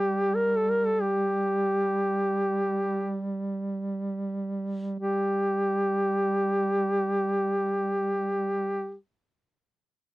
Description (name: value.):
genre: caucasian folk.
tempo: free time.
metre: none.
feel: none.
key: G minor.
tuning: A4 = 440 Hz.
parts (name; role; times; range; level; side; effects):
mellow duduk; melody; 0.0-8.9 s; G4 to Bb4; -25 LUFS; equal; none.
mellow duduk; drone; 0.0-9.0 s; G3; -30 LUFS; right 2 dB; none.
room: light reverb.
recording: dry, close 1970s-style studio recording.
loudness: -25 LUFS.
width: side -19 dB against mid.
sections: 0.0-5.0 A section; 5.0-8.6 B section.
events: slowing down 0.0-5.0.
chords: none.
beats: free time.